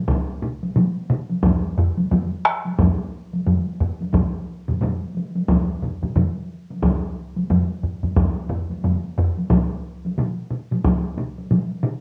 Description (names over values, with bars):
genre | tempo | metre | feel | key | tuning
japanese traditional, taiko drum ensemble | 89 BPM | 4/4 | swing 60% on 16ths | none | none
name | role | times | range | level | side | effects
solo taiko drums | percussion | 0.1-11.0 s | none | -26 LUFS | equal | none
taiko ensemble | percussion | 0.1-11.7 s | none | -25 LUFS | equal | none
taiko ensemble | percussion | 0.1-12.0 s | none | -26 LUFS | equal | none
taiko ensemble | percussion | 1.4-9.4 s | none | -24 LUFS | equal | none
room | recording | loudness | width
wet small room reverb, RT60 0.5 s | home recording on cassette | -22 LUFS | mono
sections
0.0-12.0 A section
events
none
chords
none